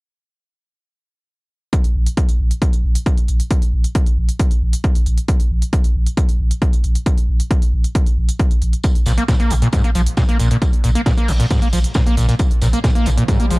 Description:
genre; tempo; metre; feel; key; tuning
driving peak-time techno; 135 BPM; 4/4; straight; unclear; A4 = 440 Hz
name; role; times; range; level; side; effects
electronic hi-hat; drums; 1.7-13.6 s; none; -31 LUFS; right 1 dB; none
electronic kick drum; drums; 1.7-13.4 s; none; -16 LUFS; equal; none
saturated sub bass; bass; 1.8-13.6 s; Bb1; -18 LUFS; equal; overdrive, sidechain pumping, low-pass filter
crunchy breakbeat drum kit; drums; 8.8-13.6 s; hi-hat, snare drum, tambourine; -31 LUFS; equal; sidechain pumping on hats, high-pass filter on hats, high-pass filter on snare, sidechain pumping on perc, high-pass filter on perc, high-pass filter on room
screaming distorted acid line; riff; 9.1-13.6 s; Ab2 to Bb3; -18 LUFS; equal; distortion, wide subtle chorus, sidechain pumping
riser; sound effects; 12.7-13.6 s; none; -29 LUFS; right 3 dB; none
room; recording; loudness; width
studio reverb; dry, gritty hardware recording; -14 LUFS; side -23 dB against mid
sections
1.7-13.6 A section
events
riser 12.7-13.6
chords
1.7 Bb5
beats
| 1.73 2.17 2.62 3.06 | 3.51 3.95 4.39 4.84 | 5.28 5.73 6.17 6.62 | 7.06 7.51 7.95 8.39 | 8.84 9.28 9.73 10.17 | 10.62 11.06 11.51 11.95 | 12.39 12.84 13.28

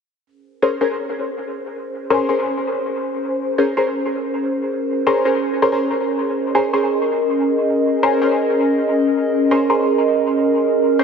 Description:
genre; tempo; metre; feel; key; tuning
drum and bass; free time; none; none; Bb minor; A4 = 440 Hz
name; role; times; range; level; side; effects
warbly tape-like pad; sustained chords; 1.3-11.0 s; Db4 to Eb5; -18 LUFS; right 1 dB; chorus, built-in reverb, phaser, vintage 12-bit sampler grit
band-passed chord stab; stabs; 0.6-11.0 s; Db4 to C5; -20 LUFS; left 1 dB; phaser, lush chorus, cassette tape, dub echo
room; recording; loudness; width
wet lush hall reverb, RT60 2.8 s; heavily compressed radio sound, multiband compression, nothing above 10.8 kHz; -16 LUFS; side -6 dB against mid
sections
0.3-11.0 A section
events
filter sweep on synth stab 0.3-11.0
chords
0.3 Bbm9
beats
free time

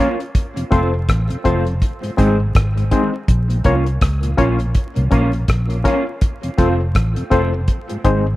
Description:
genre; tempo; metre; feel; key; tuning
roots reggae; 82 BPM; 4/4; swing 58% on 16ths; Bb minor; A4 = 440 Hz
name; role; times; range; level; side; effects
mellow electric guitar; accompaniment; 0.0-8.2 s; Eb3 to F4; -24 LUFS; right 3 dB; ensemble chorus, dub echo
mellow tonewheel organ; accompaniment; 0.0-8.3 s; F2 to Db4; -27 LUFS; left 1 dB; slow rotary speaker, dub echo
reed electric piano; stabs; 0.0-8.3 s; C4 to Db5; -21 LUFS; left 4 dB; fast tremolo
damped 70s drum kit; drums; 0.2-8.2 s; hi-hat, kick drum, rim click; -17 LUFS; equal; none
vintage muted fingered electric bass; bass; 0.7-8.4 s; F1 to Db2; -18 LUFS; equal; none
room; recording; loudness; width
light reverb, small room ambience; echo-heavy mix, vinyl crackle; -15 LUFS; side -17 dB against mid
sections
0.0-8.4 A section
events
none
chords
0.4 F; 1.8 Ab; 3.3 Bbm; 6.2 F; 7.7 Ab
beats
| 0.35 1.09 1.82 2.55 | 3.28 4.02 4.75 5.48 | 6.21 6.95 7.68

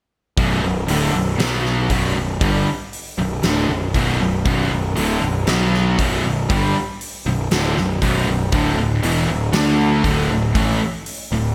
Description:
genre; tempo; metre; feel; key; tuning
hard rock; 118 BPM; 4/4; straight; B minor; A4 = 440 Hz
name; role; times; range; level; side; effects
overdriven semi-hollow guitar; riff; 0.4-11.5 s; B1 to D4; -25 LUFS; equal; subtle chorus
tight distorted guitar; riff; 0.4-11.5 s; B1 to D4; -24 LUFS; equal; distortion
fuzz picked electric bass; bass; 0.4-11.5 s; B0 to D2; -24 LUFS; equal; overdrive
huge arena drum kit; drums; 0.4-11.2 s; hi-hat, kick drum, snare drum; -26 LUFS; equal; none
room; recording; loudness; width
moderate lush hall reverb, RT60 1.6 s, studio ambience; bright 1980s-style digital production; -19 LUFS; mono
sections
0.4-11.5 A section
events
none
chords
0.4 Bm; 8.5 D5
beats
| 0.38 0.89 1.40 1.91 | 2.42 2.93 3.44 3.95 | 4.46 4.97 5.48 5.99 | 6.49 7.00 7.51 8.02 | 8.53 9.03 9.54 10.05 | 10.56 11.06

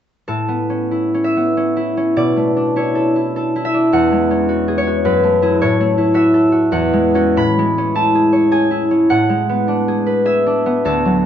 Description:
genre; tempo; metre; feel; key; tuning
classical, solo harp piece; 86-111 BPM; 3/4; rubato; A major; A4 = 440 Hz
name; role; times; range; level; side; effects
concert harp; solo; 0.3-11.3 s; D2 to B5; -13 LUFS; equal; none
room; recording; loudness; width
moderate stone room reverb, RT60 1.0 s; dark, warm production, nothing above 8.0 kHz; -13 LUFS; side -9 dB against mid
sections
0.3-11.3 A section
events
none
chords
0.3 Aadd9; 2.2 Bm11; 3.9 E13; 5.1 F#m11; 5.6 A6; 6.7 E69; 7.4 Amaj7; 9.1 Bm6/A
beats
| 0.27 0.91 1.56 | 2.17 2.76 3.35 | 3.93 4.49 5.05 | 5.62 6.17 6.72 | 7.38 7.96 8.52 | 9.11 9.69 10.27 | 10.86

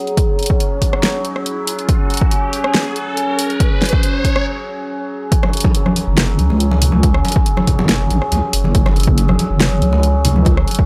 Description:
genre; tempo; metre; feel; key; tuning
deep dubstep; 140 BPM; 4/4; half-time; unclear; A4 = 444 Hz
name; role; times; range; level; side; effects
overtone-sweeping drone; sustained chords; 0.0-10.9 s; F#3 to G#4; -24 LUFS; equal; chorus, built-in reverb, phaser
riser; sound effects; 0.4-4.5 s; none; -29 LUFS; equal; none
deep house drum kit; drums; 0.1-10.8 s; hi-hat, rim click, snare drum; -22 LUFS; equal; overdrive
electronic kick drum; drums; 0.2-10.9 s; none; -17 LUFS; equal; overdrive
congas; percussion; 5.4-10.9 s; none; -22 LUFS; equal; none
deep soft wobble bass; bass; 6.1-10.7 s; F#1 to C#2; -17 LUFS; equal; chorus, transformer saturation
room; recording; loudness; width
little or no reverb; dry, gritty hardware recording, transformer saturation; -16 LUFS; mono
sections
0.0-5.3 A section; 5.3-10.9 B section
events
build-up 0.0-5.3; riser 0.4-4.5; break 4.5-5.3; drop 5.3-10.9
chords
0.0 F#5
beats
| 0.18 0.60 1.03 1.46 | 1.89 2.32 2.75 3.18 | 3.60 4.03 4.46 4.89 | 5.32 5.75 6.18 6.61 | 7.03 7.46 7.89 8.32 | 8.75 9.18 9.61 10.03 | 10.46

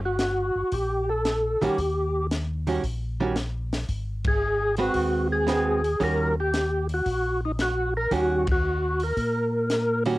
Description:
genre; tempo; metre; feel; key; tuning
soul jazz organ trio; 114 BPM; 4/4; swing 69% on 8ths; unclear; A4 = 438 Hz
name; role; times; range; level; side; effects
mellow tonewheel organ; bass; 0.0-10.2 s; G1 to Bb2; -29 LUFS; equal; overdrive, chorus vibrato, slow rotary speaker
percussive tonewheel organ; melody; 0.1-10.0 s; Eb4 to Bb4; -25 LUFS; equal; slow rotary speaker, overdrive, chorus vibrato
compact cocktail drum kit; drums; 0.2-10.1 s; hi-hat, kick drum, ride cymbal, snare drum; -30 LUFS; left 1 dB; cassette tape
archtop guitar, miked and amplified; accompaniment; 1.6-10.2 s; Eb3 to B4; -26 LUFS; right 4 dB; none
room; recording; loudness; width
light reverb; home recording on cassette; -23 LUFS; side -18 dB against mid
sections
0.0-10.2 A section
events
band accent 4.2, 8.4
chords
0.0 Eb(#9); 3.9 Ab7#9; 6.0 Eb7#9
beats
0.19 0.72 1.25 | 1.77 2.30 2.83 3.36 | 3.89 4.41 4.94 5.47 | 6.00 6.53 7.05 7.58 | 8.11 8.64 9.17 9.70

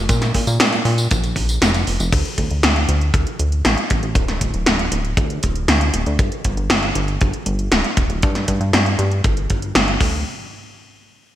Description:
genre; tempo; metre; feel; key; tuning
synthwave; 118 BPM; 4/4; straight; D minor; A4 = 440 Hz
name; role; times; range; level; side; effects
chorused synth bass; bass; 0.0-10.2 s; D1 to Bb2; -20 LUFS; equal; tube saturation
80s electronic pad drums; drums; 0.1-10.1 s; crash cymbal, hi-hat, snare drum, tambourine; -19 LUFS; equal; gated reverb
kick drum; drums; 0.1-10.1 s; none; -21 LUFS; equal; none
room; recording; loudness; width
light reverb, small room reverb; bright 1980s-style digital production; -16 LUFS; side -12 dB against mid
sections
0.0-2.1 A section; 2.1-10.3 B section; 10.3-11.4 C section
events
none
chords
none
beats
| 0.09 0.60 1.11 1.62 | 2.12 2.63 3.14 3.65 | 4.16 4.67 5.18 5.68 | 6.19 6.70 7.21 7.72 | 8.23 8.73 9.24 9.75

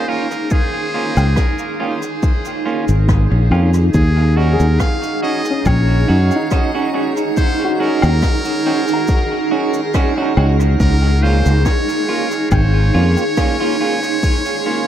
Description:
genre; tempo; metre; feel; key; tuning
ambient dub; 70 BPM; 4/4; swing 54% on 16ths; Eb dorian; A4 = 441 Hz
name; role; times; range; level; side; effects
trumpet with metal mute; melody; 0.0-14.9 s; Ab4 to F5; -23 LUFS; equal; tape echo
granular cloud pad; sustained chords; 0.0-14.9 s; Eb4 to C6; -20 LUFS; right 1 dB; built-in reverb
semi-hollow electric guitar; stabs; 0.0-14.9 s; Bb3 to Gb4; -23 LUFS; right 4 dB; dub echo
cabasa, woodblock and rim click; drums; 0.3-14.6 s; none; -29 LUFS; left 1 dB; dub echo
electronic kick drum; drums; 0.5-14.4 s; none; -17 LUFS; equal; overdrive
fingered electric bass; bass; 1.2-13.1 s; Ab1 to Gb2; -13 LUFS; equal; tube saturation
felt-muted upright piano; arpeggios; 4.5-14.9 s; Db4 to Bb5; -26 LUFS; left 3 dB; tape echo
room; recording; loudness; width
light reverb; none; -13 LUFS; side -10 dB against mid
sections
0.0-14.9 A section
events
none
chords
0.0 Db6; 3.9 Ebm7; 10.8 Db6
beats
| 0.52 1.37 2.23 3.09 | 3.94 4.80 5.66 6.52 | 7.37 8.23 9.09 9.94 | 10.80 11.66 12.52 13.37 | 14.23

